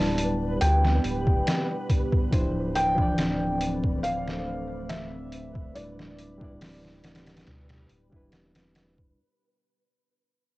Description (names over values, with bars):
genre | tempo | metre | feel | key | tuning
trip hop | 70 BPM | 4/4 | swing 53% on 16ths | unclear | A4 = 440 Hz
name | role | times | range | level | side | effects
felt-muted upright piano | melody | 0.0-8.3 s | D5 to A5 | -30 LUFS | equal | cassette tape, tape echo, plate reverb
bright reed electric piano | accompaniment | 0.0-9.2 s | E3 to D5 | -32 LUFS | equal | harmonic tremolo, cassette tape, tape echo
deep dark ambient pad | sustained chords | 0.1-9.2 s | A3 to D5 | -35 LUFS | right 1 dB | chorus, built-in reverb, cassette tape
round analog bass | bass | 0.0-9.1 s | D1 to D2 | -29 LUFS | equal | tube saturation
flickering grainy texture | texture | 0.0-9.2 s | B4 | -40 LUFS | right 1 dB | built-in reverb, cassette tape
trip hop sampler-style drum kit | drums | 0.2-9.2 s | hi-hat, kick drum, snare drum | -27 LUFS | equal | overdrive, cassette tape
room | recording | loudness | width
moderate booth ambience, RT60 0.2 s | home recording on cassette | -23 LUFS | side -20 dB against mid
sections
0.0-9.2 A section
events
fade-out 0.0-9.2; filter sweep on reed electric piano 0.0-9.2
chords
0.0 Em7/D; 2.3 Dm9; 5.8 Em7/D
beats
0.61 1.47 | 2.33 3.18 4.04 4.90 | 5.76 6.61 7.47 8.33